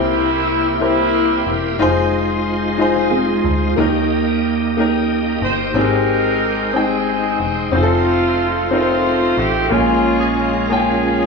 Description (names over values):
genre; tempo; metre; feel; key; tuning
slow gospel; 61 BPM (dotted quarters); 6/8; straight; unclear; A4 = 440 Hz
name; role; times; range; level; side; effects
warm horn section; melody; 0.0-1.8, 5.4-11.3 s; G3 to C5; -19 LUFS; right 1 dB; none
bright upright piano; accompaniment; 0.0-11.3 s; Ab2 to G5; -18 LUFS; left 3 dB; none
bright tonewheel organ; sustained chords; 0.0-11.3 s; Ab3 to G5; -22 LUFS; right 2 dB; slow rotary speaker, chorus vibrato
metallic FM bass; bass; 0.0-11.3 s; E1 to Eb2; -24 LUFS; right 1 dB; none
mellow electric guitar; second line; 3.0-3.8 s; Ab3 to Ab4; -22 LUFS; right 4 dB; tremolo
room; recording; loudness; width
wet recital hall reverb, RT60 1.7 s; small room reverb; -14 LUFS; side -4 dB against mid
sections
0.0-11.3 A section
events
none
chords
0.0 C7; 1.8 Fm7; 3.8 Eb; 5.8 Abmaj7; 7.7 F7; 9.7 Bbm7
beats
0.81 | 1.80 2.79 | 3.78 4.77 | 5.76 6.75 | 7.73 8.72 | 9.71 10.70